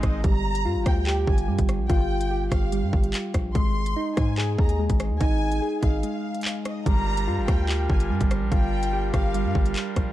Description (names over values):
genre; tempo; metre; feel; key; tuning
hip hop, drill; 145 BPM; 4/4; half-time; G phrygian; A4 = 440 Hz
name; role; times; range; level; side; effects
dark studio violin section; second line; 0.0-9.7 s; Eb5 to C6; -33 LUFS; left 2 dB; tape echo
pipe organ, trumpet; sustained chords; 0.0-0.2, 6.9-10.1 s; G3 to Bb4; -35 LUFS; equal; none
soft electric-piano-like synth keys; arpeggios; 0.0-10.1 s; G3 to Ab4; -28 LUFS; right 1 dB; chorus, low-pass filter, tape echo
hard-hitting 808-style bass; bass; 0.0-10.1 s; G1 to Ab2; -26 LUFS; equal; none
drill drum kit; drums; 0.0-10.1 s; handclaps, hi-hat, kick drum, rim click; -24 LUFS; equal; vintage 12-bit sampler grit
room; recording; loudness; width
little or no reverb; dark, warm production; -21 LUFS; side -14 dB against mid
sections
0.2-10.1 A section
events
break 6.0-6.9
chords
0.2 G7(no3); 3.6 Ab5; 6.9 Gm7